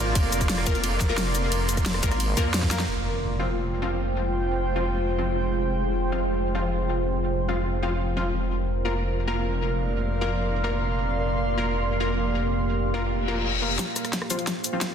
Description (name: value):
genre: dark technical drum and bass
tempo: 176 BPM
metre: 4/4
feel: straight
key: F dorian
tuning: A4 = 439 Hz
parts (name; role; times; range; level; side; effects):
- deep dark ambient pad; sustained chords; 0.0-14.9 s; Ab3 to D5; -30 LUFS; right 2 dB; chorus, built-in reverb, sidechain pumping
- wide detuned saw bass; bass; 0.0-13.8 s; F1 to F2; -27 LUFS; equal; chorus, sidechain pumping
- airy breathy pad; texture; 0.0-14.9 s; F4 to C6; -31 LUFS; right 1 dB; chorus, sidechain pumping
- dubstep drum kit; drums; 0.2-2.9, 13.8-14.9 s; hi-hat, ride cymbal, rim click, shaker, snare drum; -28 LUFS; left 1 dB; studio reverb
- electronic kick drum; drums; 0.2-2.7, 13.8-14.9 s; none; -25 LUFS; equal; high-pass filter on kick, studio reverb, high-pass filter on room
- orchestra-hit-like synth stab; stabs; 0.7-14.8 s; F3 to Bb4; -31 LUFS; left 3 dB; built-in reverb, ping-pong delay
- vowel-sweep wobble bass; bass; 2.0-2.4 s; Ab1; -26 LUFS; equal; chorus
- impact, reverse cymbal and riser; sound effects; 2.9-4.2, 13.2-14.9 s; none; -33 LUFS; left 3 dB; none
room: moderate lush hall reverb, RT60 2.1 s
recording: dense, heavily limited modern master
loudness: -23 LUFS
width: side -8 dB against mid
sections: 0.0-2.9 A section; 2.9-13.8 B section; 13.8-14.9 C section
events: drop 0.0-2.9; drum fill 2.6, 13.8-14.9; band accent 2.8; impact 2.9-4.2; reverse cymbal 13.2-13.8; build-up 13.8-14.9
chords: 0.0 Bb/F; 2.9 Fm; 8.3 Bb/F; 13.8 Fm